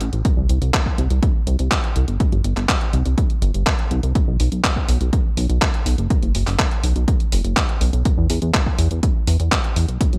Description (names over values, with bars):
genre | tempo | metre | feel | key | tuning
italo disco | 123 BPM | 4/4 | straight | unclear | A4 = 440 Hz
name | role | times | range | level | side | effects
chorused synth bass | bass | 0.0-10.2 s | F#1 to E2 | -21 LUFS | equal | none
detuned 8-bit digital drum machine | drums | 0.0-10.2 s | handclaps, hi-hat | -26 LUFS | equal | gated reverb
electronic kick drum | drums | 0.2-10.1 s | none | -22 LUFS | equal | overdrive
room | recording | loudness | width
little or no reverb | none | -19 LUFS | mono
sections
0.0-10.2 A section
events
none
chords
none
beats
| 0.25 0.74 1.23 1.71 | 2.20 2.69 3.18 3.67 | 4.15 4.64 5.13 5.62 | 6.10 6.59 7.08 7.57 | 8.05 8.54 9.03 9.52 | 10.01